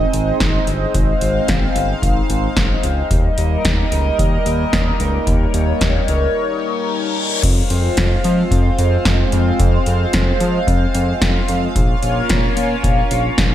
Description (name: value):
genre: synth-pop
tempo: 111 BPM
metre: 4/4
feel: straight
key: F minor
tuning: A4 = 444 Hz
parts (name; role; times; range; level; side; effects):
- chorused pulse-width pad; sustained chords; 0.0-13.5 s; G3 to F5; -19 LUFS; equal; phaser
- smooth synth bass; bass; 0.0-13.5 s; G1 to F3; -19 LUFS; equal; none
- electro analog drum machine; drums; 0.1-13.5 s; crash cymbal, hi-hat, kick drum, snare drum; -18 LUFS; equal; gated reverb
- reverse cymbal; sound effects; 6.6-7.4 s; none; -24 LUFS; left 4 dB; none
room: light reverb, digital ambience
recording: none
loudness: -14 LUFS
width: side -12 dB against mid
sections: 0.0-7.4 A section; 7.4-13.5 B section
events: break 6.4-7.4; reverse cymbal 6.6-7.4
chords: 0.0 Ab; 3.1 Eb; 7.4 Fm; 11.8 Bbm